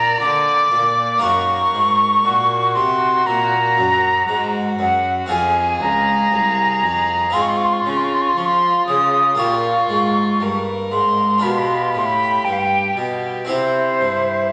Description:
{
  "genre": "classical, baroque-style sonata movement with continuo",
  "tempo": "59 BPM",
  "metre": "4/4",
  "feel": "straight",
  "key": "F minor from 5.3 s",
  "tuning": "A4 = 440 Hz",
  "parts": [
    { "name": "silver concert flute", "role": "melody", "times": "0.0-14.5 s", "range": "C5 to Eb6", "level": "-19 LUFS", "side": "equal", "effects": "none" },
    { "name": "rich violin", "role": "second line", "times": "0.0-14.5 s", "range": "E4 to D5", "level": "-27 LUFS", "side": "equal", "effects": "none" },
    { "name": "harpsichord", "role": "accompaniment", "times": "0.0-14.5 s", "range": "C2 to Ab4", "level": "-27 LUFS", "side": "equal", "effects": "none" },
    { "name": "clear cello", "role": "bass", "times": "0.0-14.5 s", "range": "C2 to F3", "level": "-29 LUFS", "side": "equal", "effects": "none" }
  ],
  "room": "wet recital hall reverb, RT60 1.4 s",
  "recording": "none",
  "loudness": "-17 LUFS",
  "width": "mono",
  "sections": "0.0-14.5 A section",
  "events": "none",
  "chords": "0.0 Bb7; 1.2 Ebm/Gb; 5.3 Fm; 7.3 Fm/Ab; 9.4 Gm7b5; 11.4 G7; 13.5 C"
}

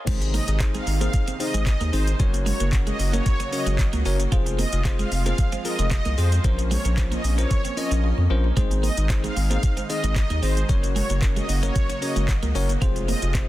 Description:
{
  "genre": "dance-pop",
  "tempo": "113 BPM",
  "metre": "4/4",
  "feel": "straight",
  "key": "unclear",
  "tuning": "A4 = 440 Hz",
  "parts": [
    { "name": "soft supersaw", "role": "sustained chords", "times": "0.0-13.5 s", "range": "C3 to Gb4", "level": "-34 LUFS", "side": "right 2 dB", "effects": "sidechain pumping" },
    { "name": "mallet-like synth pluck", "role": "arpeggios", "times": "0.0-13.5 s", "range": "Eb3 to Ab5", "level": "-37 LUFS", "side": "right 4 dB", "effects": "none" },
    { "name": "twelve-string electric guitar", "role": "riff", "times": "0.0-13.2 s", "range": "Ab3 to F4", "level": "-33 LUFS", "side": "right 6 dB", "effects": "lush chorus" },
    { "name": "bell-like tine electric piano", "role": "accompaniment", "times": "0.1-13.5 s", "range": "C4 to Eb5", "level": "-31 LUFS", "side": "left 5 dB", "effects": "fast stereo tremolo, sidechain pumping" },
    { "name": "saturated sub bass", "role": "bass", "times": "0.1-13.5 s", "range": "F1 to F2", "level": "-23 LUFS", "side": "equal", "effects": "sidechain pumping" },
    { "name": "smooth R&B drum kit", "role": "drums", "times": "0.1-13.5 s", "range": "crash cymbal, handclaps, hi-hat, kick drum, shaker, snare drum", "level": "-24 LUFS", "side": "equal", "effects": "none" },
    { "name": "supersaw pad", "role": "melody", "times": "0.3-13.2 s", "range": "C5 to F5", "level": "-31 LUFS", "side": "right 1 dB", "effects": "tape echo" }
  ],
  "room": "little or no reverb",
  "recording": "dense, heavily limited modern master, high-pass filter",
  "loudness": "-20 LUFS",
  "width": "side -15 dB against mid",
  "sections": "0.1-13.5 A section",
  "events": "drop 0.1-13.5; silent gap 8.0-8.6",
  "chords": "0.1 Ab; 2.2 Gb; 4.3 Fm; 6.4 Bbmadd9; 8.6 Ab; 10.7 Gb; 12.8 Fm"
}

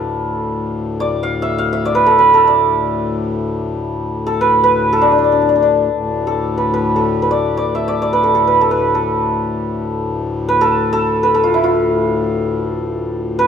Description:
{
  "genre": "indian classical, Hindustani",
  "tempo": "free time",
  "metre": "none",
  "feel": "none",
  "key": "D raga shivaranjani",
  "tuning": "A4 = 441 Hz",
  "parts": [
    { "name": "santur", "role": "melody", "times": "0.0-13.5 s", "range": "D4 to F5", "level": "-14 LUFS", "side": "right 1 dB", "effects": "none" },
    { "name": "hand-pumped harmonium", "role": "drone", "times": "0.0-13.5 s", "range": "D2 to A2", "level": "-20 LUFS", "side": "left 3 dB", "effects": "none" }
  ],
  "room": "moderate recital hall reverb, RT60 1.5 s",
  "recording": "close, detailed microphones",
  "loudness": "-13 LUFS",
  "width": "side -7 dB against mid",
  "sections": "0.0-5.9 A section; 5.9-13.5 A section",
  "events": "none",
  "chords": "none"
}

